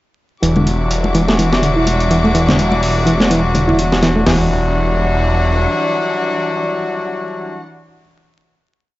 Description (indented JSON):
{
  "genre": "breakbeat, breaks",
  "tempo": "125 BPM",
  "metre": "4/4",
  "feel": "swing 57% on 16ths",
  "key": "unclear",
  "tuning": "A4 = 436 Hz",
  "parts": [
    { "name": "rich studio string section", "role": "sustained chords", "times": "0.4-7.6 s", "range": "E3 to D6", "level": "-23 LUFS", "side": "left 1 dB", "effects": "none" },
    { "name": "reed electric piano", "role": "riff", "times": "0.4-4.5 s", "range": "D3 to E4", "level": "-16 LUFS", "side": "right 1 dB", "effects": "low-pass filter, tape echo" },
    { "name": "clear horn section", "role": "stabs", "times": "0.4-7.6 s", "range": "F#3 to F#4", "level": "-19 LUFS", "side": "left 2 dB", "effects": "low-pass filter, tape echo" },
    { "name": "phased detuned saw bass", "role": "bass", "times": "0.4-5.7 s", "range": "E1", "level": "-17 LUFS", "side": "equal", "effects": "phaser" },
    { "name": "breakbeat sampler-style drum kit", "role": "drums", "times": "0.4-4.4 s", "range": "hi-hat, snare drum, toms", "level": "-19 LUFS", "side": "equal", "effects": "none" },
    { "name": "congas", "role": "percussion", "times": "0.6-4.0 s", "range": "none", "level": "-21 LUFS", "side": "left 1 dB", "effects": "none" }
  ],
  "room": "light reverb",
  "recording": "dry, gritty hardware recording, vinyl crackle, nothing above 7.7 kHz",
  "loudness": "-13 LUFS",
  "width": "side -17 dB against mid",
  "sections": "0.4-4.3 breakdown; 4.3-8.1 final chord",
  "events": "filter sweep on horn section 0.4-4.3",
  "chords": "0.4 Em9"
}